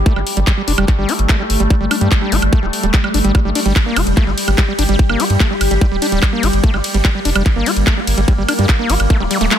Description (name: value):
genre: psychedelic trance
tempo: 146 BPM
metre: 4/4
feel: straight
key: G minor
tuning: A4 = 441 Hz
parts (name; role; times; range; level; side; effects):
- overtone-sweeping drone; sustained chords; 0.0-9.6 s; G3 to G4; -20 LUFS; left 1 dB; chorus, built-in reverb, sidechain pumping
- round analog bass; bass; 0.0-9.5 s; D1 to G2; -17 LUFS; equal; none
- overdriven acid bass; riff; 0.1-9.6 s; G3 to G4; -20 LUFS; equal; distortion, auto-pan, sidechain pumping, ping-pong delay
- electronic kick drum; drums; 0.1-9.2 s; none; -13 LUFS; equal; none
- garage drum kit; drums; 0.1-9.6 s; handclaps, hi-hat, ride cymbal, woodblock; -20 LUFS; equal; none
room: little or no reverb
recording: dense, heavily limited modern master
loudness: -12 LUFS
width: side -10 dB against mid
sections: 0.0-9.6 A section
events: none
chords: 0.0 G5